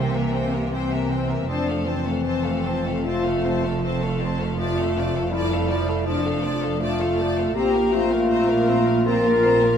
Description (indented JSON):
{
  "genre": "cinematic, emotional film score for orchestra",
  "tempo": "80 BPM",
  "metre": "4/4",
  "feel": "rubato",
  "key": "D minor",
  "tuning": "A4 = 440 Hz",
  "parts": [
    { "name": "rich studio violin section", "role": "melody", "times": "0.0-9.8 s", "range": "E5 to Bb5", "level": "-34 LUFS", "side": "left 5 dB", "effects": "none" },
    { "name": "bright symphonic violin section", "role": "second line", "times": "0.0-9.8 s", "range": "A4 to D5", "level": "-31 LUFS", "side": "left 4 dB", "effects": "none" },
    { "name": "mellow clarinet", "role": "second line", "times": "0.0-9.8 s", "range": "E3 to F4", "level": "-29 LUFS", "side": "right 1 dB", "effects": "none" },
    { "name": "clear symphonic viola section", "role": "accompaniment", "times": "0.0-9.8 s", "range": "F3 to C4", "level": "-30 LUFS", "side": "right 1 dB", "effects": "none" },
    { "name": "mellow French horn section", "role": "sustained chords", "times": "0.0-9.8 s", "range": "Bb3 to Bb4", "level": "-23 LUFS", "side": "left 3 dB", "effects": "none" },
    { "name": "clear symphonic double bass section", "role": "bass", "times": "0.0-9.8 s", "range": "F1 to C2", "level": "-29 LUFS", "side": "right 4 dB", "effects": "none" },
    { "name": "rich symphonic cello section", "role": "bass", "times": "0.0-9.8 s", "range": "F2 to C3", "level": "-27 LUFS", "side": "right 3 dB", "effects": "none" }
  ],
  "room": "moderate scoring stage reverb, RT60 1.5 s",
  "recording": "none",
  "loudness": "-20 LUFS",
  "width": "side -8 dB against mid",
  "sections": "0.0-9.8 A section",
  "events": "none",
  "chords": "0.0 C7; 1.5 F; 4.6 Dm/F; 7.6 Bbsus2"
}